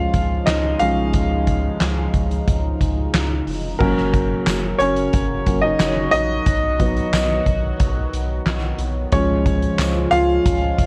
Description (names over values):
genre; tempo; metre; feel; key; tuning
piano-driven pop; 90 BPM; 4/4; straight; F# major; A4 = 440 Hz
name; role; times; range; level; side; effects
warm upright piano; accompaniment; 0.0-10.9 s; E#3 to G#5; -23 LUFS; equal; none
sweeping resonant pad; sustained chords; 0.0-10.9 s; C#3 to F#4; -30 LUFS; equal; chorus, phaser
round analog bass; bass; 0.0-10.9 s; E#1 to C#2; -26 LUFS; equal; none
soft-mallet drum kit; drums; 0.1-10.9 s; crash cymbal, handclaps, hi-hat, kick drum, snare drum; -24 LUFS; equal; none
tambourine; percussion; 4.5-10.0 s; none; -39 LUFS; equal; none
room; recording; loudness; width
light reverb; cassette tape; -19 LUFS; mono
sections
0.0-3.8 A section; 3.8-10.9 B section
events
upright piano solo 0.0-3.8, 3.8-10.9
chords
0.0 C#; 3.8 F#; 6.5 B; 9.1 C#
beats
0.48 | 1.14 1.81 2.47 3.14 | 3.80 4.47 5.13 5.80 | 6.46 7.13 7.79 8.46 | 9.12 9.79 10.45